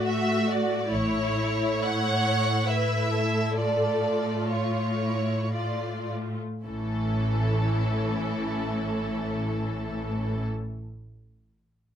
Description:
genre	classical, slow romantic movement for string orchestra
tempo	51-72 BPM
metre	3/4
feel	rubato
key	A major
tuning	A4 = 440 Hz
part	warm symphonic violin section	melody	0.0-10.5 s	A4 to F#5	-30 LUFS	right 1 dB	none
part	warm symphonic violin section	second line	0.0-10.4 s	C#4 to C#5	-32 LUFS	equal	none
part	clear symphonic viola section	accompaniment	0.0-10.4 s	E3 to F#4	-31 LUFS	left 1 dB	none
part	rich symphonic cello section	bass	0.0-10.5 s	A2	-30 LUFS	equal	none
part	rich symphonic double bass section	bass	0.9-1.8, 6.7-10.4 s	A1	-32 LUFS	right 1 dB	none
room	light reverb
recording	close, detailed microphones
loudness	-24 LUFS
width	side -9 dB against mid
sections	0.0-6.7 A section; 6.7-9.9 B section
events	slowing down 0.0-6.7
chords	0.0 D/A; 0.9 A; 3.6 Dm/A; 6.7 A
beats	0.08 | 0.91 1.81 2.67 | 3.56 4.51 5.54 | 6.67 7.75 8.83

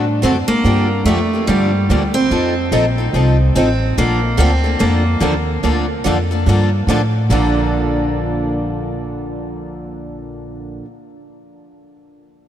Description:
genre	acoustic string swing (jazz manouche)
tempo	145 BPM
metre	4/4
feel	swing 62% on 8ths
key	Bb major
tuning	A4 = 440 Hz
part	picked steel-string acoustic guitar	melody	0.0-6.8 s	G3 to D4	-19 LUFS	right 1 dB	none
part	picked steel-string acoustic guitar	accompaniment	0.0-10.9 s	Bb2 to A4	-22 LUFS	left 5 dB	none
part	picked steel-string acoustic guitar	accompaniment	0.0-10.9 s	Bb2 to A4	-22 LUFS	right 5 dB	none
part	upright bass	bass	0.0-10.8 s	A1 to A2	-18 LUFS	equal	none
room	moderate cathedral reverb, RT60 6.2 s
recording	in a vast, echoing space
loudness	-14 LUFS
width	side -10 dB against mid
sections	0.0-7.3 A section; 7.3-10.6 B section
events	none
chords	0.0 D7; 0.7 Gm7; 2.3 F7; 4.0 Bbmaj7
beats	0.24 | 0.66 1.07 1.49 1.90 | 2.32 2.73 3.15 3.56 | 3.98 4.39 4.81 5.22 | 5.64 6.05 6.47 6.88 | 7.30 7.71 8.12 8.54 | 8.95 9.37 9.78 10.19

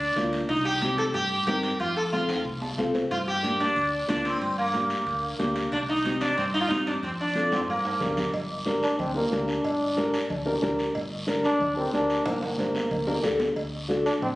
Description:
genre	latin, cumbia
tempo	184 BPM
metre	4/4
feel	straight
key	G minor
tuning	A4 = 436 Hz
part	sitar	melody	0.0-8.1 s	Bb3 to A4	-26 LUFS	equal	none
part	deep dub fingered electric bass	bass	0.0-14.4 s	G1 to G2	-36 LUFS	equal	none
part	dark upright piano	accompaniment	0.2-14.1 s	Bb3 to A5	-28 LUFS	left 1 dB	none
part	congas	percussion	0.2-14.4 s	none	-36 LUFS	right 1 dB	none
part	guiro	percussion	0.2-14.4 s	none	-38 LUFS	equal	none
part	timbales and cowbell	percussion	0.2-14.4 s	none	-36 LUFS	right 2 dB	none
part	warm trombone	second line	8.8-14.3 s	Bb3 to D4	-26 LUFS	equal	none
room	moderate studio reverb, RT60 0.8 s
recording	recorded on a phone in the room, studio reverb, compression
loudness	-24 LUFS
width	side -18 dB against mid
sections	0.0-8.3 A section; 8.3-14.4 B section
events	drum fill 2.1-3.1, 7.4-8.3, 12.3-13.6; upright piano fill 2.5-3.1; trombone solo 8.3-14.4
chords	0.5 Cm; 1.8 F; 3.1 Gm; 5.7 Cm; 7.0 F; 7.7 Gm; 13.6 D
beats	0.17 | 0.49 0.82 1.15 1.47 | 1.80 2.13 2.45 2.78 | 3.11 3.43 3.76 4.09 | 4.41 4.74 5.07 5.39 | 5.72 6.05 6.38 6.70 | 7.03 7.36 7.68 8.01 | 8.34 8.66 8.99 9.32 | 9.64 9.97 10.30 10.63 | 10.95 11.28 11.61 11.93 | 12.26 12.59 12.91 13.24 | 13.57 13.89 14.22

